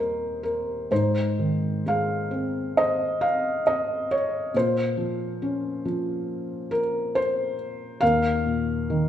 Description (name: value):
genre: classical, lyrical solo piano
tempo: 68 BPM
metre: 4/4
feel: rubato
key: Ab major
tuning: A4 = 443 Hz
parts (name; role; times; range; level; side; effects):
- felt-muted upright piano; solo; 0.0-9.1 s; Eb2 to F5; -23 LUFS; equal; none
room: wet recital hall reverb, RT60 1.5 s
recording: recorded in a church or concert hall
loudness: -23 LUFS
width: side -10 dB against mid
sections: 0.0-9.1 A section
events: none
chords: 0.0 Eb; 0.9 Ab; 4.5 Bbm; 8.0 Ebsus2